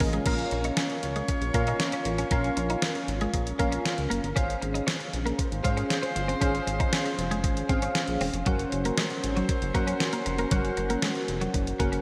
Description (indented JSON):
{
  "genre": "1980s-style pop",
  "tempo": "117 BPM",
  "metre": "4/4",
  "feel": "straight",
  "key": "Bb minor",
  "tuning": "A4 = 443 Hz",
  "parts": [
    { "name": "bell-like tine electric piano", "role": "accompaniment", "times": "0.0-12.0 s", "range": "Db4 to Bb5", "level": "-33 LUFS", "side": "equal", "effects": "analog chorus" },
    { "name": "twelve-string electric guitar", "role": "riff", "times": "0.0-12.0 s", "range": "Gb3 to Eb4", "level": "-36 LUFS", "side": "equal", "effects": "analog chorus, digital delay" },
    { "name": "chorused synth bass", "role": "bass", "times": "0.0-12.0 s", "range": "E1 to Bb2", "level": "-34 LUFS", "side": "equal", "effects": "none" },
    { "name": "clean 12-bit digital drum machine", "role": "drums", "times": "0.0-12.0 s", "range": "crash cymbal, hi-hat, kick drum, snare drum", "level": "-32 LUFS", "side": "equal", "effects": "gated reverb" },
    { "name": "warm horn section", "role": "stabs", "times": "0.3-12.0 s", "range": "Gb3 to Db5", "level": "-38 LUFS", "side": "equal", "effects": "digital delay" }
  ],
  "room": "wet lush hall reverb, RT60 2.2 s",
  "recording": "bright 1980s-style digital production",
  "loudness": "-27 LUFS",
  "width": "mono",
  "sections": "0.3-12.0 A section",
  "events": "tine electric piano fill 0.0",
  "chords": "0.3 Bbm; 4.4 Dbmaj7; 8.5 Gb"
}